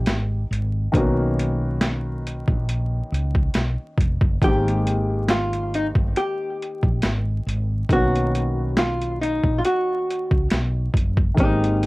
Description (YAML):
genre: lo-fi hip hop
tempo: 69 BPM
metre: 4/4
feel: swing 56% on 16ths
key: unclear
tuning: A4 = 440 Hz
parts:
  - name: hollow-body jazz guitar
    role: melody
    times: 0.0-11.9 s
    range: Eb4 to G4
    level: -24 LUFS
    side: equal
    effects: low-pass filter
  - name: dark upright piano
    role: accompaniment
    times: 0.0-11.9 s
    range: Eb3 to G4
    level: -26 LUFS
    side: left 1 dB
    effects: cassette tape, low-pass filter
  - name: woody fretless electric bass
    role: bass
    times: 0.0-11.9 s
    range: F1 to C#2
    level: -23 LUFS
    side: equal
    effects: none
  - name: boom bap sampler-style drum kit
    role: drums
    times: 0.1-11.9 s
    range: hi-hat, kick drum, snare drum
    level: -21 LUFS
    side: equal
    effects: overdrive
room: light reverb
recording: worn, warbling old tape, cassette tape, vinyl crackle, warbly pitch drift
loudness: -19 LUFS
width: side -22 dB against mid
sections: 0.0-11.9 A section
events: none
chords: 0.0 Abmaj9; 0.9 Bmaj9; 4.4 Abmaj9; 7.9 Bmaj9